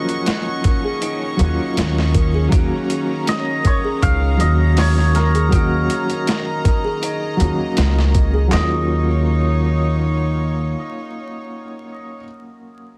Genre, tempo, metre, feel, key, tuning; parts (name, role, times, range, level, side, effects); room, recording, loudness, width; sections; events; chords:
trip hop; 80 BPM; 4/4; straight; Eb minor; A4 = 440 Hz
hammered dulcimer; melody; 0.0-12.2 s; Bb4 to Gb5; -29 LUFS; equal; dub echo
felt-muted upright piano; accompaniment; 0.0-13.0 s; F3 to Gb4; -27 LUFS; equal; tremolo, tape echo
rich chamber string section; sustained chords; 0.0-12.2 s; Eb3 to Db6; -30 LUFS; equal
bowed-like drone; texture; 0.0-8.5 s; Db4; -34 LUFS; equal; built-in reverb
dusty soul sampler-style drum kit; drums; 0.1-8.7 s; handclaps, hi-hat, kick drum, snare drum; -22 LUFS; equal; overdrive, studio reverb
music box; arpeggios; 0.6-8.9 s; Eb4 to Bb4; -32 LUFS; equal; tape echo
upright bass; bass; 1.4-10.7 s; Db2 to Eb2; -19 LUFS; equal; tube saturation
little or no reverb; dense, heavily limited modern master, vinyl crackle; -18 LUFS; mono
0.0-8.5 A section; 8.5-11.5 B section
0.0 Ebm7; 2.5 Gb; 8.5 Ebm7